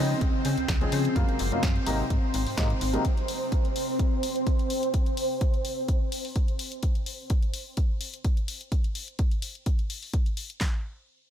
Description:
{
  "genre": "filtered disco house",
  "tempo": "127 BPM",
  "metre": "4/4",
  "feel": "swing 54% on 16ths",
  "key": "unclear",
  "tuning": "A4 = 440 Hz",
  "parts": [
    { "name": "warm baby grand piano", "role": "accompaniment", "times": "0.0-3.0 s", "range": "C3 to Ab4", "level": "-32 LUFS", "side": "left 1 dB", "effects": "phaser, sidechain pumping, low-pass filter" },
    { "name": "string machine, full ensemble", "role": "sustained chords", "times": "0.0-6.8 s", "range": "C4 to C5", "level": "-31 LUFS", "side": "right 1 dB", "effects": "phaser, ensemble chorus, sidechain pumping, low-pass filter" },
    { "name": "slap-like FM bass", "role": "bass", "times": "0.0-3.0 s", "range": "Gb1 to Db3", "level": "-30 LUFS", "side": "equal", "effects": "sidechain pumping, low-pass filter" },
    { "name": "house drum kit", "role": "drums", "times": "0.2-10.7 s", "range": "handclaps, kick drum, snare drum", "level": "-26 LUFS", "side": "equal", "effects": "none" },
    { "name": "house drum kit", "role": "drums", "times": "0.2-10.6 s", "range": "hi-hat, snare drum", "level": "-35 LUFS", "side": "left 3 dB", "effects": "none" }
  ],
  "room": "light reverb",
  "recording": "none",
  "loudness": "-25 LUFS",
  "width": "side -10 dB against mid",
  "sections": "0.0-10.6 A section",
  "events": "filter sweep 0.0-10.6",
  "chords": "0.0 Dbmaj7; 1.2 Gbmaj7; 1.9 Ab7; 3.0 N.C."
}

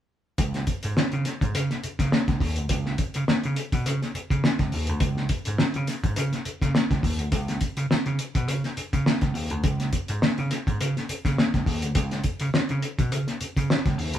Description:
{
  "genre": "funk",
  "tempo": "104 BPM",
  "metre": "4/4",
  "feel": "swing 56% on 16ths",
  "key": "unclear",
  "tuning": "A4 = 440 Hz",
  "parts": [
    { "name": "vintage slap bass", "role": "bass", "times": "0.4-14.2 s", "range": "Db2 to Db3", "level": "-28 LUFS", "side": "right 1 dB", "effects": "none" },
    { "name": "cloth-damped thuddy drum kit", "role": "drums", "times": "0.4-14.2 s", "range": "hi-hat, kick drum, snare drum", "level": "-24 LUFS", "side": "equal", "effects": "none" }
  ],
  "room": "light reverb",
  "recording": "band playing live in one room",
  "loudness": "-23 LUFS",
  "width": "side -10 dB against mid",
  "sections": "0.4-14.2 A section",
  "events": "none",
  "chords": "none"
}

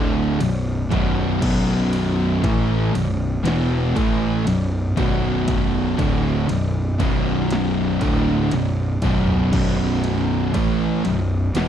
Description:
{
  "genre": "stoner and doom metal",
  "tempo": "59 BPM",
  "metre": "4/4",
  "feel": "straight",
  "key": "B minor",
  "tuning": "A4 = 440 Hz",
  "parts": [
    { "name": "distorted electric guitar", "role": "riff", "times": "0.0-11.7 s", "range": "B1 to A3", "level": "-24 LUFS", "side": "left 1 dB", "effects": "distortion" },
    { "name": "thick fuzz guitar", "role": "riff", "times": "0.0-11.7 s", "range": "B1 to A3", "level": "-25 LUFS", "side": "left 8 dB", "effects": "distortion" },
    { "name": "thick fuzz guitar", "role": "riff", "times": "0.0-11.7 s", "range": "B1 to A3", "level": "-23 LUFS", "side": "right 7 dB", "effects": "distortion" },
    { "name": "fuzz picked electric bass", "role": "bass", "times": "0.0-11.7 s", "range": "B0 to A1", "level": "-25 LUFS", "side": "equal", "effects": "overdrive" },
    { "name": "punchy analog drum machine", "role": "drums", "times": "0.4-11.7 s", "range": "crash cymbal, kick drum, ride cymbal, snare drum, toms", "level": "-25 LUFS", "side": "equal", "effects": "none" }
  ],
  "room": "light reverb",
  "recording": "dark, warm production",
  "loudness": "-18 LUFS",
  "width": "side -9 dB against mid",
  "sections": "0.0-11.7 A section",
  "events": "drum fill 8.5-9.5",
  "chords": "0.0 Bm"
}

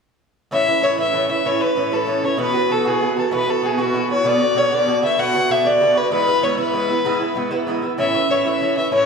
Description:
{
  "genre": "celtic folk",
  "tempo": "129 BPM (dotted quarters)",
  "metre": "12/8",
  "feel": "straight",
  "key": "A major",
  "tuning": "A4 = 441 Hz",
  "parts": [
    { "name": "dark fiddle", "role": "melody", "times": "0.5-9.1 s", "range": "F#4 to F#5", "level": "-18 LUFS", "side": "left 2 dB", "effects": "none" },
    { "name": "Irish bouzouki", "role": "accompaniment", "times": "0.5-9.1 s", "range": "G#2 to F#4", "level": "-20 LUFS", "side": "right 2 dB", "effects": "none" }
  ],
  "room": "wet recital hall reverb, RT60 1.7 s",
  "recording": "heard from further back in the room",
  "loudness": "-16 LUFS",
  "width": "side -5 dB against mid",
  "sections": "0.5-9.1 A section",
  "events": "none",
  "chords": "0.5 A; 2.4 Esus2; 4.3 Bm; 6.1 E; 8.0 A"
}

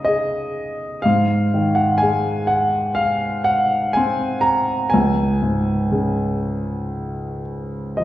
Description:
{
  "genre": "classical, lyrical solo piano",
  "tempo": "61 BPM",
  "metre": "4/4",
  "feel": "rubato",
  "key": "Db major",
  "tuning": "A4 = 439 Hz",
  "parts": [
    { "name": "warm grand piano", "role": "solo", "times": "0.0-8.0 s", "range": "Db2 to Bb5", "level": "-17 LUFS", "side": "equal", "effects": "none" }
  ],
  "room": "wet recital hall reverb, RT60 1.4 s",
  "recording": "heard from further back in the room, lossy compression artefacts",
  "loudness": "-17 LUFS",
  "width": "side -14 dB against mid",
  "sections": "0.0-8.0 A section",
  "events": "none",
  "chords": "0.0 Dbsus2; 1.1 Ab; 4.9 Db5"
}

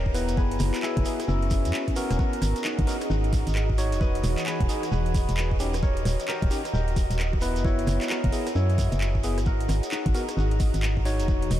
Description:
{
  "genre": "UK garage, two-step garage",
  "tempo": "132 BPM",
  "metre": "4/4",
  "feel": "swing 62% on 16ths",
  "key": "G# minor",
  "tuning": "A4 = 440 Hz",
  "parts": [
    { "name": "concert harp", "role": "melody", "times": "0.0-11.6 s", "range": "C#4 to D#5", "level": "-33 LUFS", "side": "left 1 dB", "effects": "diffuse ambient delay" },
    { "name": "soft string machine", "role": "sustained chords", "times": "0.0-11.6 s", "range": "B3 to A#5", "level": "-38 LUFS", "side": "equal", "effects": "phaser, ensemble chorus, vintage 12-bit sampler grit, sidechain pumping" },
    { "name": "organ-like FM bass", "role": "bass", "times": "0.0-11.6 s", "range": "D#1 to F#2", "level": "-25 LUFS", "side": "equal", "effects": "sidechain pumping" },
    { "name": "warbly tape-like pad", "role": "texture", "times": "0.0-11.6 s", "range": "E3 to A#5", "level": "-37 LUFS", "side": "equal", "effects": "chorus, built-in reverb, sidechain pumping" },
    { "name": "overdriven tine electric piano", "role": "stabs", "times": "0.1-11.5 s", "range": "B3 to C#5", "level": "-32 LUFS", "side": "left 1 dB", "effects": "diffuse ambient delay" },
    { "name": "electronic kick drum", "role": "drums", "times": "0.1-11.4 s", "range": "none", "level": "-26 LUFS", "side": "equal", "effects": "overdrive" },
    { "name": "garage drum kit", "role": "drums", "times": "0.1-11.6 s", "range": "handclaps, hi-hat, rim click", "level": "-35 LUFS", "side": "right 1 dB", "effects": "overdrive" },
    { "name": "shekere", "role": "percussion", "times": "0.1-11.6 s", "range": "none", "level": "-41 LUFS", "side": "right 4 dB", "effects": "none" }
  ],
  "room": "light reverb, digital ambience",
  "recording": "none",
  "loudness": "-23 LUFS",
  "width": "side -12 dB against mid",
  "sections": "0.0-11.6 A section",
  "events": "none",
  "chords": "0.4 F#9sus4; 2.2 G#m9; 3.8 Emaj9; 5.6 D#7; 7.6 F#9sus4; 9.5 G#7sus2; 11.1 Emaj9"
}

